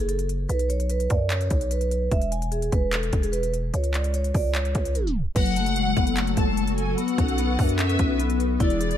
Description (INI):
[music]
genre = hip hop, trap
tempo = 148 BPM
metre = 4/4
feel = half-time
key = unclear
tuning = A4 = 440 Hz
[part]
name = vibraphone with medium mallets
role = melody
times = 0.0-9.0 s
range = F#3 to G#5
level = -27 LUFS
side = left 2 dB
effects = ping-pong delay
[part]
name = growling 808-style bass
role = bass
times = 0.0-9.0 s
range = E1 to F#2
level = -25 LUFS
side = equal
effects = none
[part]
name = trap drum kit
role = drums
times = 0.1-9.0 s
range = crash cymbal, handclaps, hi-hat, kick drum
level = -26 LUFS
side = equal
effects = none
[part]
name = warm studio violin section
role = second line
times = 5.4-9.0 s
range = D5 to A5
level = -29 LUFS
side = left 2 dB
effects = ping-pong delay
[part]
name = hollow soft pad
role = sustained chords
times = 5.4-9.0 s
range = E3 to D5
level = -29 LUFS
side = equal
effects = ensemble chorus
[sound]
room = light reverb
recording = tape stop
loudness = -21 LUFS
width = side -10 dB against mid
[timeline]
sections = 0.0-5.4 A section; 5.4-9.0 B section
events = tape stop 5.0-5.4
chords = 0.5 B5; 2.1 E; 3.7 Bmadd9/C#; 5.4 F#m; 7.0 B5